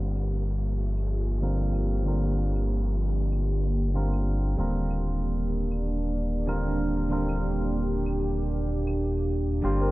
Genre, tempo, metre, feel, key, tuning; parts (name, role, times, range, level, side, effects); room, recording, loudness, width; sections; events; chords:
organic downtempo; 95 BPM; 4/4; swing 56% on 16ths; A4 = 440 Hz
clean electric guitar; accompaniment; 0.0-9.9 s; D3 to Bb4; -33 LUFS; right 1 dB; low-pass filter, tape echo
bowed-like drone; sustained chords; 0.0-9.9 s; F3 to G4; -31 LUFS; right 1 dB; built-in reverb
Celtic harp; arpeggios; 0.0-1.6, 9.6-9.9 s; G4 to D5; -36 LUFS; left 1 dB; tape echo
smooth gliding synth bass; bass; 0.0-9.9 s; Eb1 to G1; -27 LUFS; equal
cabasa and claves; drums; 0.0-9.9 s; -55 LUFS; left 2 dB
downlifter; sound effects; 0.0-4.6 s; -48 LUFS; equal
tabla; percussion; 9.8-9.9 s; -39 LUFS; right 1 dB
light reverb; worn, warbling old tape, cassette tape, warbly pitch drift, low-pass filter; -25 LUFS; side -18 dB against mid
0.0-9.9 A section
filter sweep on clean electric guitar 0.0-9.9; filter sweep on synth drone 0.0-9.9; filter sweep 0.0-9.9
0.0 Gm7; 4.6 Ebmaj7